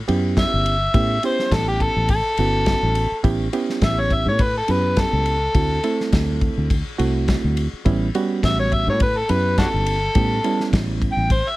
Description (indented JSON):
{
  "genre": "straight-eighth soul blues",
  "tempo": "104 BPM",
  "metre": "4/4",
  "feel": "swing 54% on 16ths",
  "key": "A mixolydian",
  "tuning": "A4 = 442 Hz",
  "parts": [
    { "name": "reed electric piano", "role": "accompaniment", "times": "0.1-11.3 s", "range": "G3 to A4", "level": "-24 LUFS", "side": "right 4 dB", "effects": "none" },
    { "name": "fingered electric bass", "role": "bass", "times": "0.1-11.4 s", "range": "G1 to A2", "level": "-22 LUFS", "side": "equal", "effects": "none" },
    { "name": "warm soul drum kit", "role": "drums", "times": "0.1-11.4 s", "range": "kick drum, ride cymbal, snare drum", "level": "-23 LUFS", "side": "equal", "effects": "none" },
    { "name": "overdriven harmonica", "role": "melody", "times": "0.4-11.6 s", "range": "D4 to G5", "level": "-21 LUFS", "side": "left 1 dB", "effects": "none" }
  ],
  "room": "little or no reverb",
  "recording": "none",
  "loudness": "-17 LUFS",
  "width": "side -18 dB against mid",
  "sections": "0.0-3.2 A section; 3.2-11.6 A section",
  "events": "harmonica solo 0.0-3.2, 3.2-11.6",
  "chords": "0.0 A9; 5.6 D9; 7.9 A9"
}